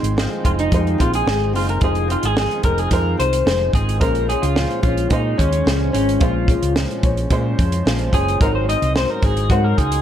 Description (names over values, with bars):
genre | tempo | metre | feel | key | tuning
indie pop, bedroom pop | 109 BPM | 4/4 | straight | unclear | A4 = 437 Hz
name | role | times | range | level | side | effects
dark upright piano | accompaniment | 0.0-10.0 s | Db4 to C5 | -27 LUFS | right 6 dB | none
flamenco guitar | accompaniment | 0.0-10.0 s | F2 to Eb4 | -26 LUFS | left 3 dB | lush chorus, warbly pitch drift
hollow-body short-scale fingered electric bass | bass | 0.0-10.0 s | F1 to Bb2 | -21 LUFS | equal | none
compact cocktail drum kit | drums | 0.0-10.0 s | hi-hat, kick drum, snare drum | -20 LUFS | equal | none
electric guitar through a small old amp | melody | 0.5-10.0 s | Db4 to Eb5 | -21 LUFS | left 2 dB | wide subtle chorus, slapback echo
room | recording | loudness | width
light reverb, studio reverb | dark, warm production | -16 LUFS | side -10 dB against mid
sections
0.0-10.0 A section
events
clean electric guitar solo 0.0-10.0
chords
0.0 Fm7; 4.0 Bbm7; 8.4 Ab7